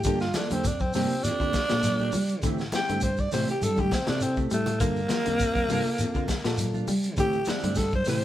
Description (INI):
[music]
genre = afrobeat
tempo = 101 BPM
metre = 4/4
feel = swing 53% on 16ths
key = G dorian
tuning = A4 = 441 Hz
[part]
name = raspy alto saxophone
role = melody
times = 0.0-8.2 s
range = A3 to G5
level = -28 LUFS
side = equal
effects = none
[part]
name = fingered electric bass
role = bass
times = 0.0-8.2 s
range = F2 to G3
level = -30 LUFS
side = equal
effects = none
[part]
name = crunchy breakbeat drum kit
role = drums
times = 0.0-8.2 s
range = hi-hat, kick drum, snare drum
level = -31 LUFS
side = left 1 dB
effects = none
[part]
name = shekere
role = percussion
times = 0.0-8.2 s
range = none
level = -35 LUFS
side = equal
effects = none
[part]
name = bright reed electric piano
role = accompaniment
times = 0.1-8.2 s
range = Bb3 to Bb4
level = -36 LUFS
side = left 2 dB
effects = fast tremolo
[part]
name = electric guitar at the edge of break-up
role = arpeggios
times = 0.1-8.2 s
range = C3 to G3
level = -34 LUFS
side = left 4 dB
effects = none
[part]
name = mellow electric guitar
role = stabs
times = 0.1-8.2 s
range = E3 to G4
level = -34 LUFS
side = right 4 dB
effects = none
[part]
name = congas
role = percussion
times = 0.3-8.2 s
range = none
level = -35 LUFS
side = equal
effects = none
[sound]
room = light reverb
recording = band playing live in one room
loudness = -24 LUFS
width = side -12 dB against mid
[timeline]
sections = 0.0-8.2 A section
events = alto saxophone solo 0.0-8.2; drum fill 3.6-4.8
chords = 0.0 Gm7; 2.4 Am7; 4.8 Gm7; 7.2 Am7